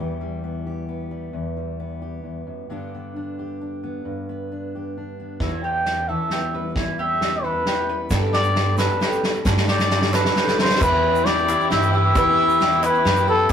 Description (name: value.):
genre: indie folk with a building arrangement.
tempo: 133 BPM.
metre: 3/4.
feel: straight.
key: unclear.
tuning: A4 = 439 Hz.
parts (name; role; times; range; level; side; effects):
fingerpicked steel-string acoustic guitar; accompaniment; 0.0-9.5 s; E2 to G4; -29 LUFS; left 1 dB; none.
bowl-back mandolin; arpeggios; 5.4-13.5 s; D4 to B4; -29 LUFS; right 4 dB; none.
upright bass; bass; 5.4-13.5 s; E2 to G2; -25 LUFS; right 1 dB; none.
soft-mallet drum kit; drums; 5.4-13.5 s; crash cymbal, kick drum, ride cymbal, snare drum; -24 LUFS; equal; none.
mellow trumpet; melody; 5.6-13.5 s; A4 to G5; -20 LUFS; equal; none.
picked twelve-string acoustic guitar; accompaniment; 8.1-13.5 s; E3 to B4; -27 LUFS; left 3 dB; none.
group handclap; percussion; 8.1-13.5 s; none; -35 LUFS; right 3 dB; none.
tube shaker; percussion; 8.1-13.5 s; none; -44 LUFS; right 7 dB; none.
warm fiddle; second line; 10.8-13.5 s; E4; -29 LUFS; left 6 dB; none.
dark chamber string section; sustained chords; 10.8-13.5 s; E3 to G4; -28 LUFS; left 3 dB; none.
room: moderate small room reverb, RT60 0.5 s.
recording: rough rehearsal-room recording, tube saturation.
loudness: -18 LUFS.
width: side -8 dB against mid.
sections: 0.0-5.4 A section; 5.4-10.8 B section; 10.8-13.5 C section.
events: build-up 5.4-10.8; drum fill 5.4-10.8.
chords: 0.0 Em; 2.7 G; 5.4 Em; 8.1 Gadd9; 10.8 Em.